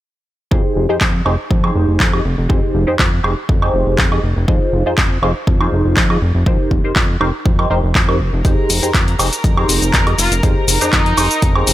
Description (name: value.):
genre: filtered disco house.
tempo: 121 BPM.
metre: 4/4.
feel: swing 53% on 16ths.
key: F minor.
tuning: A4 = 440 Hz.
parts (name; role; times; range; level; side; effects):
funky polysynth comp; accompaniment; 0.5-11.7 s; Eb4 to Eb5; -20 LUFS; equal; chorus, phaser, cassette tape, sidechain pumping, low-pass filter.
fat analog bass; bass; 0.5-11.7 s; F1 to F2; -18 LUFS; equal; sidechain pumping, low-pass filter.
electronic kick drum; drums; 0.5-11.5 s; none; -16 LUFS; equal; none.
punchy analog drum machine; drums; 1.0-11.7 s; handclaps, hi-hat, shaker, woodblock; -18 LUFS; equal; none.
tambourine; percussion; 8.4-11.7 s; none; barely audible; none; none.
warm chamber violin section; sustained chords; 8.5-11.7 s; Bb4 to Bb5; -24 LUFS; equal; sidechain pumping, low-pass filter.
brilliant trumpet section; melody; 9.9-11.5 s; Eb4 to Bb4; -20 LUFS; equal; vintage 12-bit sampler grit, sidechain pumping, low-pass filter.
room: digital ambience.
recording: none.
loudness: -12 LUFS.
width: side -14 dB against mid.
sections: 0.5-11.7 A section.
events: filter sweep 0.5-11.7.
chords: 0.5 Fm9; 4.5 Fm7; 6.5 F9sus4; 8.4 Fm9.